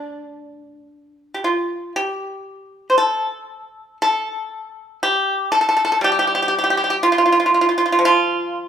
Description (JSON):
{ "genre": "chinese traditional, Chinese solo plucked strings", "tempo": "53-63 BPM", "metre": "4/4", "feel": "rubato", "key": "unclear", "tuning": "A4 = 436 Hz", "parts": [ { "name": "pipa", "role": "solo", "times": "0.0-8.7 s", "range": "A2 to C5", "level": "-16 LUFS", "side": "equal", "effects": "none" } ], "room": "moderate large studio reverb, RT60 1.2 s", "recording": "band playing live in one room", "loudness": "-16 LUFS", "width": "side -8 dB against mid", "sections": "0.0-1.9 A section; 1.9-8.7 B section", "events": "none", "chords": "none" }